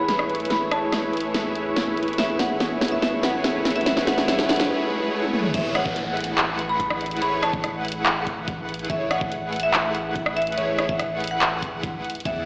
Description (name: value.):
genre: future bass.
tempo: 143 BPM.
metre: 4/4.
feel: half-time.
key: A major.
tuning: A4 = 440 Hz.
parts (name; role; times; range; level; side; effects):
marimba with hard mallets; melody; 0.0-12.4 s; E5 to B5; -27 LUFS; equal; sidechain pumping, tape echo.
warm grand piano; accompaniment; 0.0-5.4 s; none; barely audible; none; none.
clear studio string section; sustained chords; 0.0-4.7 s; E4 to E5; -35 LUFS; equal; none.
big bright polysynth; riff; 0.0-12.5 s; E3 to F#5; -26 LUFS; equal; chorus, sidechain pumping, tape echo.
saturated sub bass; bass; 0.0-12.5 s; A1 to E2; -37 LUFS; equal; tube saturation, sidechain pumping.
riser and downlifter; sound effects; 2.5-8.9 s; none; -34 LUFS; equal; none.
dubstep drum kit; drums; 0.1-12.3 s; crash cymbal, handclaps, hi-hat, rim click, snare drum, toms; -24 LUFS; equal; none.
airy dreamy lead; arpeggios; 5.5-12.5 s; C#5 to F#5; -33 LUFS; equal; chorus, sidechain pumping.
electronic kick drum; drums; 5.5-12.3 s; none; -30 LUFS; equal; none.
room: wet lush hall reverb, RT60 2.1 s.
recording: played on a big sound system in a bare room, large studio reverb, AM radio sound.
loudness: -21 LUFS.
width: side -39 dB against mid.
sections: 0.0-5.5 A section; 5.5-12.5 B section.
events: build-up 0.0-5.5; drum fill 0.0-4.7, 5.2-5.5; filter sweep on analog polysynth 0.0-5.5; break 4.7-5.5; drop 5.5-12.5.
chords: 0.0 Amaj7.